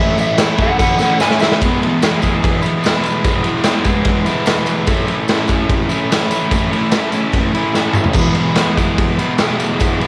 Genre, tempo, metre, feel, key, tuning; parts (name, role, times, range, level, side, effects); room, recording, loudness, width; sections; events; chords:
garage rock duo or trio; 146 BPM; 4/4; straight; E major; A4 = 440 Hz
electric slide guitar; melody; 0.0-1.6 s; A4 to G#5; -20 LUFS; equal; cassette tape
crunchy overdriven guitar; riff; 0.0-10.1 s; E2 to E4; -19 LUFS; equal; cassette tape
raw garage drum kit; drums; 0.2-10.1 s; crash cymbal, kick drum, ride cymbal, snare drum, toms; -19 LUFS; equal; cassette tape
tambourine; percussion; 0.2-9.9 s; -36 LUFS; equal
light reverb, studio ambience; home recording on cassette; -15 LUFS; mono
0.0-1.6 A section; 1.6-10.1 B section
electric slide guitar solo 0.0-1.6; drum fill 1.2-1.6, 7.8-8.2
0.0 A; 1.6 E; 4.9 A; 8.2 E